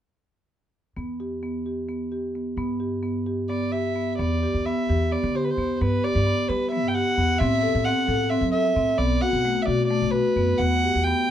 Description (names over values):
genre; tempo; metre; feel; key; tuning
contemporary instrumental, chamber music in an uneven meter; 261 BPM (eighths); 7/8; straight; unclear; A4 = 439 Hz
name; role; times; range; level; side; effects
marimba with medium mallets; arpeggios; 1.0-11.3 s; A3 to A4; -25 LUFS; equal; none
upright bass; bass; 1.0-11.1 s; B1 to G3; -27 LUFS; equal; none
warm violin; melody; 3.5-11.3 s; B4 to G5; -25 LUFS; equal; none
room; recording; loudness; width
light reverb; dark, warm production; -21 LUFS; side -10 dB against mid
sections
1.0-4.2 A section; 4.2-11.3 B section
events
none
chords
1.0 Em; 2.6 G; 4.2 Em7; 5.8 Gmaj7; 7.4 Am6; 9.0 B5; 10.6 Emadd9